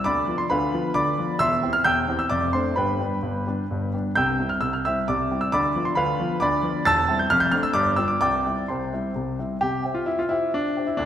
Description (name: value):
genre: classical-period piano sonatina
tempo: 132 BPM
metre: 3/4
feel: rubato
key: C major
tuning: A4 = 440 Hz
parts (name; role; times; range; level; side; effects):
- clear grand piano; solo; 0.0-11.1 s; E1 to A6; -21 LUFS; equal; none
room: wet concert hall reverb, RT60 2.0 s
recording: recorded in a church or concert hall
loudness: -21 LUFS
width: side -10 dB against mid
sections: 0.0-9.6 A section; 9.6-11.1 A section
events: none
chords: 0.0 Bdim/D; 1.4 C/E; 2.3 Dm7/F; 2.7 G; 4.1 C; 5.5 Bdim/D; 6.9 C/E; 7.3 Dm7/F; 7.7 G7; 8.2 C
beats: | 0.04 0.50 0.95 | 1.39 1.84 2.29 | 2.75 3.21 3.68 | 4.15 4.61 5.07 | 5.52 5.97 6.41 | 6.86 7.30 7.75 | 8.21 8.68 9.15 | 9.62 10.08 10.54 | 10.99